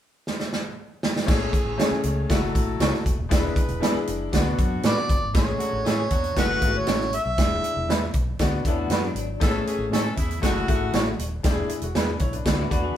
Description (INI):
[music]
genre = uptempo 1960s-style soul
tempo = 118 BPM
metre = 4/4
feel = straight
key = A major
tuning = A4 = 439 Hz
[part]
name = natural country drum kit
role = drums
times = 0.3-12.8 s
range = crash cymbal, hi-hat, kick drum, snare drum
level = -24 LUFS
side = right 1 dB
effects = none
[part]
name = clear horn section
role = second line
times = 1.3-11.1 s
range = C#3 to B4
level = -33 LUFS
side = equal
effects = none
[part]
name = bright upright piano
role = accompaniment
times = 1.3-13.0 s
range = F#3 to C#5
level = -28 LUFS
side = left 4 dB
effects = none
[part]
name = vintage muted fingered electric bass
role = bass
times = 1.3-12.9 s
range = D#1 to A2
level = -29 LUFS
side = equal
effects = none
[part]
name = electric guitar through a small old amp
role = stabs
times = 1.8-12.1 s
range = G#3 to C#5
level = -29 LUFS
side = right 2 dB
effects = none
[part]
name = mellow harmonica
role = melody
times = 4.8-8.2 s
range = B4 to E5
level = -26 LUFS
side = right 1 dB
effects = none
[part]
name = electric guitar through a small old amp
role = riff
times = 8.7-9.4, 12.6-13.0 s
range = F#3 to A4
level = -33 LUFS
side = left 4 dB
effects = tremolo
[sound]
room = moderate studio reverb, RT60 0.7 s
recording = band playing live in one room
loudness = -21 LUFS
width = side -10 dB against mid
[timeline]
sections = 0.0-1.3 A section; 1.3-5.3 B section; 5.3-13.0 C section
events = drum fill 0.3-1.3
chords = 0.0 N.C.; 1.3 Amaj7; 2.3 F#m7; 3.3 E7; 4.3 D6; 5.3 Amaj7; 6.4 F#m7; 7.4 E7; 8.4 D6; 9.4 Amaj7; 10.4 F#m7; 11.4 E7; 12.5 D6